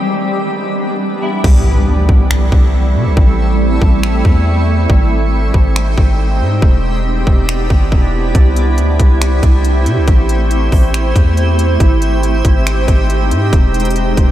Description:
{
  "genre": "hip hop, atmospheric cloud-rap",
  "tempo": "139 BPM",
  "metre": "4/4",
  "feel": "half-time",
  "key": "C major",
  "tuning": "A4 = 440 Hz",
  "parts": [
    { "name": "granular cloud pad", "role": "sustained chords", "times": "0.0-14.3 s", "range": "E3 to D5", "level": "-17 LUFS", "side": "right 1 dB", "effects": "built-in reverb, sidechain pumping, low-pass filter" },
    { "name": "electric guitar at the edge of break-up", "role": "melody", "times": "1.2-1.4 s", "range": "E4", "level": "-30 LUFS", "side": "left 1 dB", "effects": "ensemble chorus, low-pass filter, ping-pong delay" },
    { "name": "long sustained 808-style bass", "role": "bass", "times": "1.4-14.3 s", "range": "E1 to C3", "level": "-14 LUFS", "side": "equal", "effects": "none" },
    { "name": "trap drum kit", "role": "drums", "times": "1.4-14.3 s", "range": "crash cymbal, finger snaps, hi-hat, kick drum", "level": "-12 LUFS", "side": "equal", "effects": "none" },
    { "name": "impact", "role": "sound effects", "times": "1.5-3.2 s", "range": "none", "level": "-22 LUFS", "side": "equal", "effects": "none" }
  ],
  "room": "moderate huge ambient reverb, RT60 7.5 s",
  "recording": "dreamy mix soaked in reverb",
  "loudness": "-10 LUFS",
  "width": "side -13 dB against mid",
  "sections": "0.0-1.4 A section; 1.4-14.3 B section",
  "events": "filter sweep 0.0-1.4; hi-hats muted 1.4-8.3; impact 1.4-3.2",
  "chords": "0.0 Em7; 1.4 C6; 3.2 Am7; 4.9 Abmaj7; 6.6 Em7; 8.3 C6; 10.1 Am7; 11.8 Abmaj7; 13.5 Em7"
}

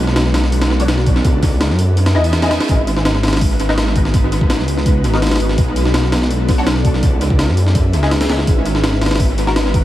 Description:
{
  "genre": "drum and bass, jungle",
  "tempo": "166 BPM",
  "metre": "4/4",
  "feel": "straight",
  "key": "G# minor",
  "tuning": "A4 = 440 Hz",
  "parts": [
    { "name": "detuned saw bass", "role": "bass", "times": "0.0-9.8 s", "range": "G#1 to F#2", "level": "-16 LUFS", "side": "equal", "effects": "none" },
    { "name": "breakbeat sampler-style drum kit", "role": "drums", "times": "0.1-9.8 s", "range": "hi-hat, kick drum, snare drum", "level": "-16 LUFS", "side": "equal", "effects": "small room ambience, dub echo" },
    { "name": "band-passed chord stab", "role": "stabs", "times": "0.8-9.5 s", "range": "B3 to D#5", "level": "-24 LUFS", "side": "left 2 dB", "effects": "phaser, ensemble chorus, cassette tape, dub echo" },
    { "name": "reverse cymbal", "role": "sound effects", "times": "2.1-2.7 s", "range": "none", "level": "-30 LUFS", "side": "right 4 dB", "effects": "none" }
  ],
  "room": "light reverb",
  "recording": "echo-heavy mix, vinyl crackle",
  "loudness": "-12 LUFS",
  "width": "side -14 dB against mid",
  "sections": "0.0-9.8 A section",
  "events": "reverse cymbal 2.1-2.7",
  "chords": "0.0 Bm7; 1.2 C#m7; 2.7 G#m7; 5.6 Bm7; 7.0 C#m7; 8.5 G#m7"
}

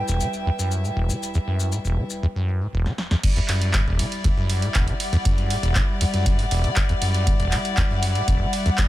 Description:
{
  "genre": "acid house",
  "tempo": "119 BPM",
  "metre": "4/4",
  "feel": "straight",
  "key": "E minor",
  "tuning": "A4 = 440 Hz",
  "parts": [
    { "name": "rich chamber string section", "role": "sustained chords", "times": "0.0-8.9 s", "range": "G3 to E5", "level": "-29 LUFS", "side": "left 2 dB", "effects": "sidechain pumping" },
    { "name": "liquid acid bass", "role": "riff", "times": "0.0-8.9 s", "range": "E1 to E3", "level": "-22 LUFS", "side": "equal", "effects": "chorus, cassette tape, sidechain pumping" },
    { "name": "airy breathy pad", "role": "texture", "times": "0.0-8.9 s", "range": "E4 to G5", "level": "-31 LUFS", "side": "equal", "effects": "chorus, sidechain pumping" },
    { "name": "maracas", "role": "percussion", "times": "0.1-2.2 s", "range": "none", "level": "-33 LUFS", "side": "left 6 dB", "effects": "none" },
    { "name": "punchy analog drum machine", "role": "drums", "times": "2.9-8.9 s", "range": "crash cymbal, handclaps, hi-hat, ride cymbal, snare drum", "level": "-28 LUFS", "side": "right 2 dB", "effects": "none" },
    { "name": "electronic kick drum", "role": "drums", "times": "3.2-8.9 s", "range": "none", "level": "-22 LUFS", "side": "equal", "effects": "none" }
  ],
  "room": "digital ambience",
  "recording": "none",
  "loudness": "-20 LUFS",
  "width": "side -15 dB against mid",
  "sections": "0.0-3.2 A section; 3.2-8.9 B section",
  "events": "drum fill 2.9-3.2; drop 3.2-8.9",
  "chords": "0.0 Em; 3.2 Em7"
}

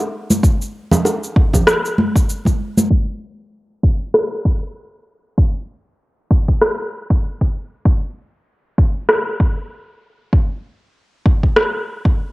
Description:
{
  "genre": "downtempo",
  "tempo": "97 BPM",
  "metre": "4/4",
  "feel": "swing 57% on 16ths",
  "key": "none",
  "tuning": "none",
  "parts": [
    { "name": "electronic cabasa and rim click", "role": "drums", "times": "0.0-11.7 s", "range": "none", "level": "-17 LUFS", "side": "equal", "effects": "overdrive" },
    { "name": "congas and bongos", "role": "percussion", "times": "0.3-2.9 s", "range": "none", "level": "-17 LUFS", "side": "right 1 dB", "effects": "none" },
    { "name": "electronic kick drum", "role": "drums", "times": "0.4-12.2 s", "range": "none", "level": "-14 LUFS", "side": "equal", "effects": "overdrive" }
  ],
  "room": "moderate spring reverb, RT60 1.6 s",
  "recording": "home recording on cassette, low-pass filter",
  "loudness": "-15 LUFS",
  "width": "side -20 dB against mid",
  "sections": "0.0-2.9 A section; 2.9-12.3 B section",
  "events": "filter sweep 2.9-12.3",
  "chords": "none"
}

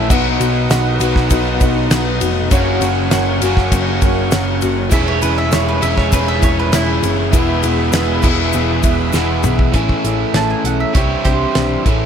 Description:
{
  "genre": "folk rock and heartland rock",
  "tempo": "100 BPM",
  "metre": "4/4",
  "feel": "straight",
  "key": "E major",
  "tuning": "A4 = 440 Hz",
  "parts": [
    { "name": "picked acoustic archtop guitar", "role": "accompaniment", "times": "0.0-12.1 s", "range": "F#2 to G#4", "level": "-22 LUFS", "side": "left 7 dB", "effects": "none" },
    { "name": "warm grand piano", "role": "accompaniment", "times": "0.0-9.7 s", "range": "E4 to F#5", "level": "-26 LUFS", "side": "right 6 dB", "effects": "none" },
    { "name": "overdriven electric guitar", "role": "riff", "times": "0.0-12.1 s", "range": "E2 to F#4", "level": "-19 LUFS", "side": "right 2 dB", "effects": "none" },
    { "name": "hollow-body short-scale picked electric bass", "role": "bass", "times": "0.0-12.0 s", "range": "E1 to C2", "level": "-19 LUFS", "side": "equal", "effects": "none" },
    { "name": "musette accordion", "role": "sustained chords", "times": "0.1-9.7 s", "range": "G#4 to D#6", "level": "-27 LUFS", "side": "right 4 dB", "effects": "none" },
    { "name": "damped 70s drum kit", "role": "drums", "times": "0.1-12.0 s", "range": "crash cymbal, hi-hat, kick drum, ride cymbal, snare drum, toms", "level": "-18 LUFS", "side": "equal", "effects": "none" },
    { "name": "tube shaker", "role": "percussion", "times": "0.1-9.6 s", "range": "none", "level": "-30 LUFS", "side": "left 12 dB", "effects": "none" },
    { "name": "mandolin", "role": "second line", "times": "4.9-11.8 s", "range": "E4 to A5", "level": "-22 LUFS", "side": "right 4 dB", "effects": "none" }
  ],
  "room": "studio reverb",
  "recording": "none",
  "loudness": "-13 LUFS",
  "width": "side -8 dB against mid",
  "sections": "0.0-9.7 A section; 9.7-12.1 B section",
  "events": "drum fill 9.1-9.7; mandolin solo 9.7-12.1",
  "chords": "0.1 B; 2.5 F#; 4.9 C#m/E; 7.3 E; 9.7 Amaj7; 11.0 Cadd9"
}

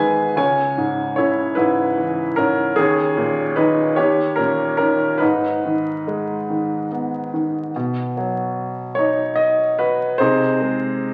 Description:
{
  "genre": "classical, lyrical solo piano",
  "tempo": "47-50 BPM (dotted quarters)",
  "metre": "6/8",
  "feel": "rubato",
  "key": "G# minor, B major from 7.7 s",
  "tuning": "A4 = 442 Hz",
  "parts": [
    { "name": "clear upright piano", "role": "solo", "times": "0.0-11.1 s", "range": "C#2 to G#5", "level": "-20 LUFS", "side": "equal", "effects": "none" }
  ],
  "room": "wet recital hall reverb, RT60 1.6 s",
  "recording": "very old 78 rpm record, vinyl crackle",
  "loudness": "-20 LUFS",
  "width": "mono",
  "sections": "0.0-7.7 A section; 7.7-11.1 B section",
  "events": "none",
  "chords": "0.4 C#m; 2.8 D#7sus4; 4.0 D#7; 5.2 G#m; 7.7 B; 10.2 G#/B#"
}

